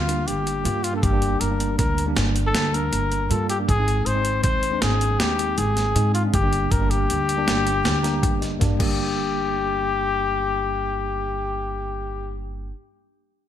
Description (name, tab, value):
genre	progressive instrumental, band music in an uneven meter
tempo	158 BPM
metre	7/4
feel	straight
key	G minor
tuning	A4 = 441 Hz
part	breathy trumpet	melody	0.0-12.4 s	F4 to C5	-24 LUFS	left 4 dB	none
part	mellow tine electric piano	accompaniment	0.0-12.7 s	G3 to Bb5	-28 LUFS	right 1 dB	overdrive, fast stereo tremolo
part	upright bass	bass	0.0-12.7 s	G1 to Ab2	-25 LUFS	equal	none
part	breakbeat sampler-style drum kit	drums	0.1-8.9 s	crash cymbal, hi-hat, kick drum, snare drum	-25 LUFS	equal	gated reverb
room	light reverb, digital ambience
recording	bright 1980s-style digital production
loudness	-20 LUFS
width	side -10 dB against mid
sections	0.0-9.0 A section; 9.0-11.6 B section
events	tine electric piano fill 7.8-9.0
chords	0.0 Gm; 3.7 Ab; 6.3 Gm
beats	0.27 0.65 | 1.03 1.41 1.79 2.17 2.54 2.92 3.30 | 3.68 4.06 4.44 4.82 5.20 5.58 5.96 | 6.33 6.71 7.09 7.47 7.85 8.23 8.61 | 8.99 9.37 9.75 10.12 10.51 10.88 11.26